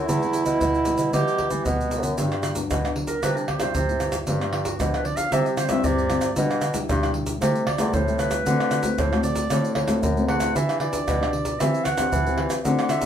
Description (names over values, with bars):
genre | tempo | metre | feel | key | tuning
samba and choro | 115 BPM | 4/4 | straight | G major | A4 = 440 Hz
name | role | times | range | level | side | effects
breathy alto saxophone | melody | 0.0-1.7 s | E4 | -33 LUFS | right 2 dB | none
warm clarinet | second line | 0.0-13.1 s | B3 to F#5 | -26 LUFS | right 3 dB | none
warm bassoon | bass | 0.0-13.1 s | E2 to E3 | -26 LUFS | equal | none
nylon-string guitar | accompaniment | 0.1-13.1 s | G2 to B4 | -27 LUFS | left 3 dB | none
egg shaker, surdo, pandeiro and tamborim | percussion | 0.1-13.1 s | none | -25 LUFS | right 1 dB | none
room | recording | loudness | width
wet studio reverb, RT60 0.5 s | band playing live in one room | -20 LUFS | side -9 dB against mid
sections
0.0-2.2 A section; 2.2-13.1 B section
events
clarinet solo 2.2-13.1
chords
0.1 Em; 2.2 Gmaj7; 3.2 Cmaj7; 4.3 G7; 5.3 C; 6.4 G6/B; 7.4 Am7; 8.5 D7; 10.6 Em7; 11.6 Cmaj7